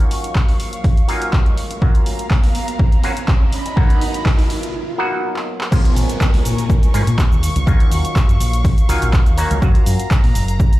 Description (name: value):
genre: filtered disco house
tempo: 123 BPM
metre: 4/4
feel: swing 54% on 16ths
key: Bb phrygian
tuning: A4 = 440 Hz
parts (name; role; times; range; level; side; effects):
- auto-wah clav; accompaniment; 0.0-10.8 s; F3 to Gb4; -25 LUFS; equal; phaser, sidechain pumping, low-pass filter
- muted studio violin section; sustained chords; 0.0-10.8 s; Bb4 to Db6; -29 LUFS; left 1 dB; sidechain pumping, low-pass filter
- punchy analog drum machine; drums; 0.0-10.8 s; crash cymbal, handclaps, hi-hat, shaker; -27 LUFS; equal; none
- riser and downlifter; sound effects; 0.2-9.6 s; none; -28 LUFS; right 2 dB; none
- deep dub fingered electric bass; bass; 0.1-10.7 s; Gb1 to B2; -19 LUFS; equal; sidechain pumping, high-pass filter, low-pass filter
- electronic kick drum; drums; 0.4-10.7 s; none; -14 LUFS; equal; none
room: little or no reverb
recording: played on a big sound system in a bare room, large studio reverb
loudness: -14 LUFS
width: side -17 dB against mid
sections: 0.0-5.7 A section; 5.7-10.8 B section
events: build-up 0.0-5.7; riser 0.2-4.7; break 4.7-5.7; drum fill 5.4-5.7; drop 5.7-10.8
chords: 0.0 Ebm9; 1.8 Gbmaj7; 3.5 Bmaj7; 5.7 Bbm7; 7.4 Ebm9; 9.6 Gbmaj7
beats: 0.35 0.84 1.33 | 1.82 2.31 2.79 3.28 | 3.77 4.26 4.74 5.23 | 5.72 6.21 6.70 7.18 | 7.67 8.16 8.65 9.13 | 9.62 10.11 10.60